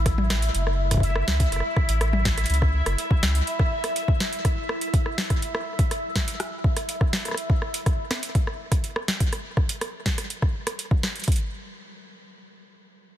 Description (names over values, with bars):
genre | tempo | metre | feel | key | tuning
IDM | 123 BPM | 4/4 | straight | unclear | A4 = 440 Hz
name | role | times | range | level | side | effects
warm sub bass | bass | 0.0-3.4 s | F#1 to C#2 | -23 LUFS | equal | tube saturation
bubbling stepped-filter texture | texture | 0.0-7.4 s | E4 to E5 | -30 LUFS | equal | chorus, built-in reverb
booming analog drum machine | drums | 0.1-11.4 s | hi-hat, rim click, snare drum, toms | -28 LUFS | equal | soft clipping on snare, digital delay
electronic kick drum | drums | 0.1-11.4 s | none | -22 LUFS | equal | overdrive
room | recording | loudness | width
digital ambience | dense, heavily limited modern master | -22 LUFS | side -12 dB against mid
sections
0.0-11.3 A section; 11.3-13.2 B section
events
none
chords
0.0 F#m; 3.5 N.C.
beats
0.06 0.55 1.03 | 1.52 2.01 2.50 2.98 | 3.47 3.96 4.45 4.94 | 5.42 5.91 6.40 6.89 | 7.38 7.86 8.35 8.84 | 9.33 9.81 10.30 10.79 | 11.28